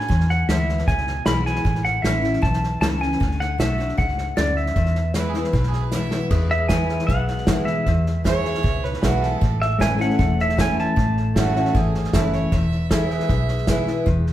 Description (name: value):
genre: honky-tonk and classic country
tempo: 155 BPM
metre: 4/4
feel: straight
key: E mixolydian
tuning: A4 = 439 Hz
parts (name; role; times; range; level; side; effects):
- pedal steel guitar; melody; 0.0-12.3 s; D5 to B5; -25 LUFS; equal; none
- picked steel-string acoustic guitar; accompaniment; 0.0-14.3 s; E2 to F#4; -25 LUFS; left 2 dB; none
- unplugged drum kit; drums; 0.0-14.3 s; crash cymbal, hi-hat, kick drum, snare drum; -24 LUFS; equal; none
- vintage muted fingered electric bass; bass; 0.1-14.3 s; E1 to E2; -24 LUFS; equal; none
- clear fiddle; second line; 5.2-14.0 s; F#4 to E5; -28 LUFS; right 5 dB; none
- pedal steel guitar; sustained chords; 6.3-14.3 s; A3 to E5; -29 LUFS; left 2 dB; none
- warm grand piano; accompaniment; 6.7-14.0 s; G#4 to E5; -29 LUFS; right 4 dB; none
room: wet large studio reverb, RT60 1.4 s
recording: heard from further back in the room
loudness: -18 LUFS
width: side -13 dB against mid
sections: 0.0-6.3 A section; 6.3-14.3 B section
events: drum fill 5.9-6.3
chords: 0.1 E; 1.7 A; 3.2 D; 4.8 E; 9.4 A; 12.5 E